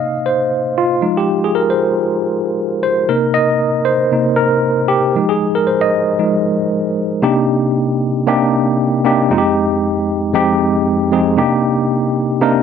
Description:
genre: disco.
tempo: 116 BPM.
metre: 4/4.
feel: swing 56% on 16ths.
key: C minor.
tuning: A4 = 440 Hz.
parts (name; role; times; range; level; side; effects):
tine electric piano; solo; 0.0-12.6 s; F2 to F5; -13 LUFS; equal; overdrive, medium stereo tremolo.
room: light reverb.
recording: none.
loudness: -13 LUFS.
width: side -7 dB against mid.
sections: 0.0-7.2 A section; 7.2-12.6 B section.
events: tine electric piano solo 0.0-7.2.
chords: 0.0 Cm7; 1.0 Fm7; 3.1 Cm7; 5.2 Fm7; 7.2 Cm9; 9.3 Fm7; 11.4 Cm9.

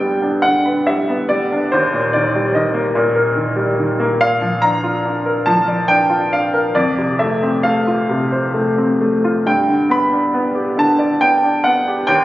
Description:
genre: classical, lyrical solo piano.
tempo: 64-74 BPM.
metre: 3/4.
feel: rubato.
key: unclear.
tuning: A4 = 442 Hz.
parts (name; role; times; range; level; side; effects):
clear upright piano; solo; 0.0-12.2 s; Eb2 to B5; -14 LUFS; equal; none.
room: wet recital hall reverb, RT60 1.4 s.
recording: recorded on a phone in the room, club reverb, compression, nothing above 7.8 kHz.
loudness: -14 LUFS.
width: side -15 dB against mid.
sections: 0.0-12.2 A section.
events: none.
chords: 0.0 G; 1.7 Eb; 4.2 Bb; 6.8 F; 9.5 G.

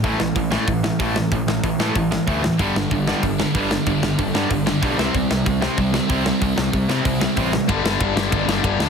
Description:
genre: punk rock.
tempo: 188 BPM.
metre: 4/4.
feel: straight.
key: unclear.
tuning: A4 = 440 Hz.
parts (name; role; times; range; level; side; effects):
overdriven electric guitar; riff; 0.0-8.9 s; G2 to C4; -24 LUFS; left 12 dB; none.
tight distorted guitar; riff; 0.0-7.7 s; G2 to C4; -23 LUFS; right 11 dB; distortion.
fuzz picked electric bass; bass; 0.0-8.9 s; G1 to C3; -26 LUFS; equal; overdrive.
tight metal drum kit; drums; 0.0-8.9 s; hi-hat, kick drum, ride cymbal, snare drum; -24 LUFS; left 1 dB; none.
crunchy overdriven guitar; riff; 2.6-8.9 s; G2 to C4; -25 LUFS; left 1 dB; none.
room: light reverb.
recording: heavily compressed radio sound.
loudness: -18 LUFS.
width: side -6 dB against mid.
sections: 0.0-7.7 A section; 7.7-8.9 B section.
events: none.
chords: 0.0 A5; 2.6 G5; 5.0 C5; 7.7 G5.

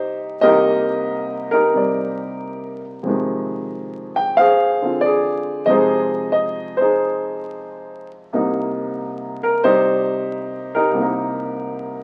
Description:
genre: solo jazz.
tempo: 91 BPM.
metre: 4/4.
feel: swing 68% on 8ths.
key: C minor.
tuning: A4 = 440 Hz.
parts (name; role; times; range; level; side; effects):
warm baby grand piano; solo; 0.0-12.0 s; C2 to G5; -20 LUFS; equal; none.
room: wet studio reverb, RT60 0.6 s.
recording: very old 78 rpm record, vinyl crackle.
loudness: -19 LUFS.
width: mono.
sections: 0.0-12.0 A section.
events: none.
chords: 0.0 Cm7; 3.1 Fm7; 8.3 Cm7.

